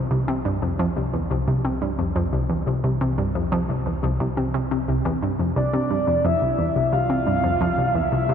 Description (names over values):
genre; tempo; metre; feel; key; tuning
ambient, sequencer-driven space music; 88 BPM; 4/4; straight; C major; A4 = 440 Hz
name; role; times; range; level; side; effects
analog pluck; riff; 0.0-8.3 s; C2 to C3; -21 LUFS; equal; chorus, ping-pong delay
analog drone; bass; 0.1-8.3 s; C2; -33 LUFS; equal; chorus
soft octave-layered synth lead; melody; 5.6-8.3 s; D5 to F5; -22 LUFS; equal; chorus, phaser, ping-pong delay
room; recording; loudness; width
wet huge ambient reverb, RT60 7.7 s; dark, warm production; -20 LUFS; side -8 dB against mid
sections
0.0-8.3 A section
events
fade-in on synth drone 0.0-8.3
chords
0.0 Csus2